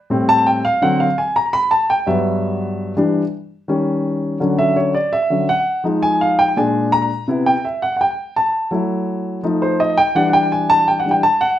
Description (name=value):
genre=jazz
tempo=167 BPM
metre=4/4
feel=straight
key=unclear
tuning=A4 = 442 Hz
part: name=warm grand piano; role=solo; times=0.1-11.6 s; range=G2 to B5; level=-15 LUFS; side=equal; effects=slapback echo
room=light reverb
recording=none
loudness=-15 LUFS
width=side -12 dB against mid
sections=0.0-4.4 A section; 4.4-11.6 A section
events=grand piano solo 0.0-4.4, 4.4-11.6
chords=0.1 Am7; 0.8 D7alt; 1.5 Gmaj7; 3.0 Em7; 3.7 Eb7; 4.4 Dmaj9; 5.8 Fm7; 6.6 Bb7; 7.3 Cmaj7; 8.7 F#m7; 9.4 F7; 10.2 Em7